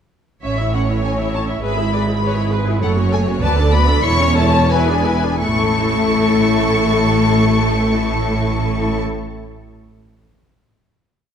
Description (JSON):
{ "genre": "quick classical-period movement for string orchestra", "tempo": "83-103 BPM", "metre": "2/4", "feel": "straight", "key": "A major", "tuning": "A4 = 440 Hz", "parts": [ { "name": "rich studio violin section", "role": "melody", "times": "0.4-9.0 s", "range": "E5 to C#6", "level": "-22 LUFS", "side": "left 3 dB", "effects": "none" }, { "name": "clear studio violin section", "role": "second line", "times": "0.4-9.0 s", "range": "A4 to A5", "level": "-24 LUFS", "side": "left 4 dB", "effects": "none" }, { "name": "rich studio viola section", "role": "accompaniment", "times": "0.4-9.0 s", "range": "A3 to E5", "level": "-20 LUFS", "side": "left 1 dB", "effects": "none" }, { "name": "rich studio cello section", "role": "bass", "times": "0.4-9.0 s", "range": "D2 to A2", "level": "-21 LUFS", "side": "right 1 dB", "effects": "none" }, { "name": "rich studio double bass section", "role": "bass", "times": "0.4-9.0 s", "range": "E1 to D2", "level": "-20 LUFS", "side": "right 3 dB", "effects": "none" } ], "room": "wet scoring stage reverb, RT60 1.6 s", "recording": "dark, warm production", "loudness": "-14 LUFS", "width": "side -8 dB against mid", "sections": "0.4-5.4 A section; 5.4-8.2 final chord", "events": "slowing down 2.2-5.4", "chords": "0.4 A; 1.6 E/G#; 2.8 F#m; 3.4 Bm7/D; 4.1 A/E; 4.7 E7; 5.4 A" }